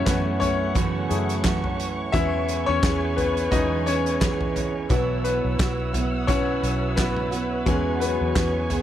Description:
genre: piano-driven pop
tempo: 87 BPM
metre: 4/4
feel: swing 56% on 16ths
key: E major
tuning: A4 = 440 Hz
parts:
  - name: clear concert grand piano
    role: accompaniment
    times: 0.0-8.8 s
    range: E3 to E5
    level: -26 LUFS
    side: left 6 dB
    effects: none
  - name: warm studio string section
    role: sustained chords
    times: 0.0-8.8 s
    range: A3 to E6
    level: -32 LUFS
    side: equal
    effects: none
  - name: fingerpicked steel-string acoustic guitar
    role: riff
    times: 0.0-8.8 s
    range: F#2 to G#4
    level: -27 LUFS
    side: right 6 dB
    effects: none
  - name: vintage muted fingered electric bass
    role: bass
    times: 0.0-8.8 s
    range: B1 to F#2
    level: -28 LUFS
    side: equal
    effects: none
  - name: loose indie drum kit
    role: drums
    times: 0.1-8.8 s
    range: handclaps, hi-hat, kick drum, snare drum, toms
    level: -26 LUFS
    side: equal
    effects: none
  - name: mellow French horn section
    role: second line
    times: 7.7-8.7 s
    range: F#3 to F#4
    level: -31 LUFS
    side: left 5 dB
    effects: none
room: light reverb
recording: none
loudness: -21 LUFS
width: side -11 dB against mid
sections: 0.0-8.8 A section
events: grand piano solo 0.0-8.8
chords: 0.0 F#m7; 2.1 E6; 4.9 Bsus4; 7.7 E6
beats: 0.07 0.76 1.45 | 2.14 2.83 3.52 4.21 | 4.90 5.59 6.28 6.97 | 7.67 8.36

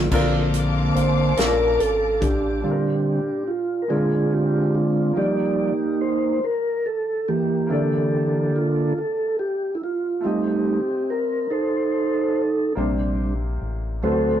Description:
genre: slow gospel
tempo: 47 BPM (dotted quarters)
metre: 6/8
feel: straight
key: Bb major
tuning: A4 = 440 Hz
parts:
  - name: clear concert grand piano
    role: accompaniment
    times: 0.0-14.4 s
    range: Bb2 to A5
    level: -31 LUFS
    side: left 2 dB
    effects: none
  - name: mellow tonewheel organ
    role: sustained chords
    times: 0.0-14.4 s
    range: D3 to D5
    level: -20 LUFS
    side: right 1 dB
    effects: slow rotary speaker
  - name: deep dub fingered electric bass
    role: bass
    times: 0.0-2.6, 12.8-14.4 s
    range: Ab1 to D2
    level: -26 LUFS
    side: left 1 dB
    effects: none
  - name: warm symphonic string section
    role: sustained chords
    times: 0.1-2.6 s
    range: F5 to D6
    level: -30 LUFS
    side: left 2 dB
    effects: none
  - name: natural country drum kit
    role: drums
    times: 0.1-2.4 s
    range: crash cymbal, hi-hat, kick drum, snare drum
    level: -25 LUFS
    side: equal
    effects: none
room: wet studio reverb, RT60 0.6 s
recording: rough rehearsal-room recording, warm saturation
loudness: -20 LUFS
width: side -10 dB against mid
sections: 0.1-2.6 A section; 2.6-14.4 B section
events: tonewheel organ solo 0.1-2.6, 2.6-14.4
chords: 0.1 Bbmaj7; 2.6 Bb6; 3.9 Bb7; 5.2 Ebmaj7; 7.7 C13; 10.2 F9; 12.8 Bb69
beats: | 0.11 1.37 | 2.63 3.90 | 5.16 6.43 | 7.70 8.96 | 10.23 11.50 | 12.77 14.04

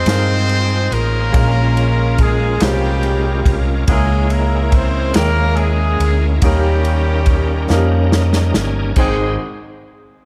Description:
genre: slow gospel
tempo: 47 BPM (dotted quarters)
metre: 6/8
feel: straight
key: Ab major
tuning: A4 = 440 Hz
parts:
  - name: warm horn section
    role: melody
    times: 0.0-9.4 s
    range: G3 to C5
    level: -23 LUFS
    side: equal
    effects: none
  - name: bright grand piano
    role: accompaniment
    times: 0.0-9.4 s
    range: Ab1 to G5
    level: -25 LUFS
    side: equal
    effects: none
  - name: bright tonewheel organ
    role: sustained chords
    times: 0.0-9.4 s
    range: G3 to Ab5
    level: -27 LUFS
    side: equal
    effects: slow rotary speaker, overdrive, chorus vibrato
  - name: hollow-body short-scale fingered electric bass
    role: bass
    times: 0.0-9.4 s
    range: G1 to G2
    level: -19 LUFS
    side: equal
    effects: none
  - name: natural country drum kit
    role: drums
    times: 0.1-9.2 s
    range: crash cymbal, kick drum, ride cymbal, snare drum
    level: -20 LUFS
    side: equal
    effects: none
room: light reverb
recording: none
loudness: -15 LUFS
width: mono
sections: 0.0-9.0 A section; 9.0-10.3 B section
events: drum fill 7.7-9.0; tonewheel organ fill 7.7-9.0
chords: 0.0 Fm7; 1.3 Bbm7; 3.9 Dbm6; 6.4 Eb7; 9.0 Abmaj7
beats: 0.07 | 1.34 2.61 | 3.88 5.16 | 6.43 7.70 | 8.97

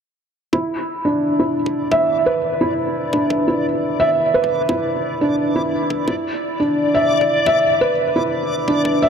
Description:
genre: half-time drum and bass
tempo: 173 BPM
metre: 4/4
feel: swing 55% on 16ths, half-time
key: unclear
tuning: A4 = 440 Hz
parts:
  - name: felt-muted upright piano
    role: arpeggios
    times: 0.5-9.1 s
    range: D4 to E5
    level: -16 LUFS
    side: right 1 dB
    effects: low-pass filter, tape echo
  - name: electronic kick drum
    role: drums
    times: 0.5-8.9 s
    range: none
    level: -29 LUFS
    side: left 1 dB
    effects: overdrive, high-pass filter on kick
  - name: backwards swelling texture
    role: texture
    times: 1.3-9.1 s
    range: D5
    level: -24 LUFS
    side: left 3 dB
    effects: built-in reverb
room: moderate huge ambient reverb, RT60 4.2 s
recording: none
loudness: -16 LUFS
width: side -7 dB against mid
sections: 0.5-9.1 A section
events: none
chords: 0.5 E5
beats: | 0.53 0.88 1.22 1.57 | 1.92 2.26 2.61 2.96 | 3.30 3.65 4.00 4.34 | 4.69 5.04 5.38 5.73 | 6.08 6.42 6.77 7.12 | 7.46 7.81 8.16 8.51 | 8.85

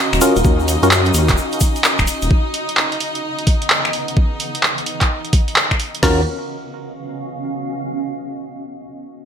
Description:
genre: UK garage, two-step garage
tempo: 129 BPM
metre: 4/4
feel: swing 64% on 16ths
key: Eb minor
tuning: A4 = 441 Hz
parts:
  - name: clear studio violin section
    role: sustained chords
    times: 0.0-6.0 s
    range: Eb4 to Eb5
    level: -26 LUFS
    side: equal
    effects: sidechain pumping
  - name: granular cloud pad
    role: texture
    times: 0.0-7.9 s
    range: Db3 to F5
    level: -26 LUFS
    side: equal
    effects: built-in reverb, sidechain pumping
  - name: dark detuned saw bass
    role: bass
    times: 0.1-2.3, 6.0-6.2 s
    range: Eb1 to Gb2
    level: -18 LUFS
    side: equal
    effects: none
  - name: punchy analog drum machine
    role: drums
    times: 0.1-6.0 s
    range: finger snaps, handclaps, hi-hat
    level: -18 LUFS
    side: right 1 dB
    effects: gated reverb
  - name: egg shaker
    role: percussion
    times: 0.1-2.3 s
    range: none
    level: -25 LUFS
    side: left 4 dB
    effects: none
  - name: percussive organ stab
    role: stabs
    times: 0.2-0.9, 6.0-6.2 s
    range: Db4 to Bb4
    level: -19 LUFS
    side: left 1 dB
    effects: chorus, ping-pong delay
  - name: garage drum kit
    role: drums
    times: 0.4-6.2 s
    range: crash cymbal, kick drum, snare drum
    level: -16 LUFS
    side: equal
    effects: overdrive, gated reverb
room: moderate lush hall reverb, RT60 1.9 s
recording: bright 1980s-style digital production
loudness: -15 LUFS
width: side -8 dB against mid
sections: 0.0-6.0 A section; 6.0-7.9 B section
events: fade-out on ambient pad 0.0-6.0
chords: 0.0 Ebm9; 2.3 Dbm9; 6.0 Ebm9 (rootless)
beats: | 0.45 0.91 1.38 1.84 | 2.31 2.77 3.24 3.70 | 4.17 4.63 5.10 5.56 | 6.03 6.49 6.96 7.42

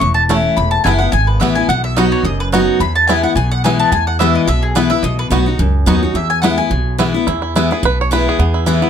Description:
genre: bluegrass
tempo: 215 BPM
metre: 4/4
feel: swing 55% on 8ths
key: E major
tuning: A4 = 440 Hz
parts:
  - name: mandolin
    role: melody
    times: 0.0-7.0 s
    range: G#4 to C#6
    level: -17 LUFS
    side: left 2 dB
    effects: none
  - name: picked steel-string acoustic guitar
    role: accompaniment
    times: 0.0-8.9 s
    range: E2 to F#4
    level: -16 LUFS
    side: left 3 dB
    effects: none
  - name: upright bass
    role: bass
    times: 0.0-8.8 s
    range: E1 to E2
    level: -17 LUFS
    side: right 1 dB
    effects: none
  - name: bluegrass banjo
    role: melody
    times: 0.3-8.9 s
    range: A3 to C#5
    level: -18 LUFS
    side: right 6 dB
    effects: none
room: light reverb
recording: close, detailed microphones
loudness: -12 LUFS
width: side -8 dB against mid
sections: 0.0-7.3 A section; 7.3-8.9 A section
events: mandolin solo 0.0-7.3; five-string banjo solo 7.3-8.9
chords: 0.0 A; 0.6 E; 1.7 B; 2.8 E; 5.0 B; 6.2 E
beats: 0.01 0.29 | 0.57 0.85 1.13 1.41 | 1.69 1.97 2.25 2.53 | 2.81 3.08 3.36 3.64 | 3.92 4.20 4.48 4.76 | 5.04 5.32 5.60 5.88 | 6.16 6.43 6.71 6.99 | 7.27 7.55 7.83 8.11 | 8.39 8.67

